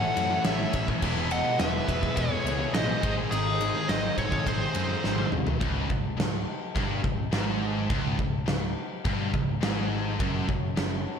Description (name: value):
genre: heavy metal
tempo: 105 BPM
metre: 4/4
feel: straight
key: C# minor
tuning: A4 = 440 Hz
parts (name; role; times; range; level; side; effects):
- nasal lead guitar with a parked wah; melody; 0.0-5.3 s; G#4 to F#5; -30 LUFS; left 2 dB; overdrive, slapback echo
- high-gain lead guitar; second line; 0.0-5.3 s; D#4 to D#5; -36 LUFS; right 4 dB; distortion, slapback echo
- dark studio string section; sustained chords; 0.0-5.6, 10.2-11.2 s; C#3 to C#5; -41 LUFS; left 2 dB; none
- high-gain distorted guitar; riff; 0.0-11.0 s; C#2 to A4; -34 LUFS; right 1 dB; distortion, slapback echo
- scooped high-gain guitar; riff; 0.0-11.0 s; C#2 to G#3; -34 LUFS; left 9 dB; distortion
- sludgy distorted guitar; riff; 0.0-11.0 s; C#2 to G#3; -35 LUFS; right 8 dB; overdrive
- picked electric bass; bass; 0.0-11.0 s; C#1 to F#2; -32 LUFS; equal; none
- big rock drum kit; drums; 0.2-10.9 s; crash cymbal, kick drum, ride cymbal, snare drum, toms; -29 LUFS; equal; none
room: moderate recital hall reverb, RT60 1.6 s, studio ambience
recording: big arena sound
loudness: -25 LUFS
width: side -7 dB against mid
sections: 0.0-5.6 A section; 5.6-11.2 B section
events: drum fill 5.0-5.6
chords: 0.0 A; 1.0 E; 3.0 G#; 5.6 C#5; 10.2 F#5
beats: 0.46 | 1.03 1.60 2.17 2.74 | 3.32 3.89 4.46 5.03 | 5.61 6.18 6.75 7.33 | 7.90 8.47 9.05 9.62 | 10.20 10.77